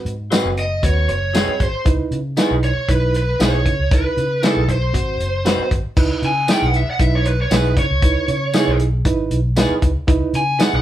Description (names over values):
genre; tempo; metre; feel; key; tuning
straight-eighth soul blues; 117 BPM; 4/4; swing 54% on 16ths; C# minor; A4 = 439 Hz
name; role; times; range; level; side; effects
reed electric piano; accompaniment; 0.0-10.8 s; B#3 to B#4; -23 LUFS; right 5 dB; fast tremolo
vintage muted fingered electric bass; bass; 0.1-10.8 s; F#1 to C#3; -20 LUFS; equal; none
warm soul drum kit; drums; 0.1-10.7 s; crash cymbal, hi-hat, kick drum, snare drum, tambourine; -19 LUFS; equal; none
electric guitar through a small old amp; stabs; 0.3-10.8 s; F#3 to B4; -23 LUFS; left 1 dB; none
lead guitar through a small cranked amp; melody; 0.6-10.8 s; B4 to G#5; -21 LUFS; equal; overdrive
room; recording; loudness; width
moderate studio reverb, RT60 0.6 s; band playing live in one room; -15 LUFS; side -12 dB against mid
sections
0.0-6.0 A section; 6.0-10.8 B section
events
lead electric guitar solo 6.0-10.8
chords
0.0 G#7#9; 1.9 C#m7; 4.9 G#7#9; 6.0 C#m7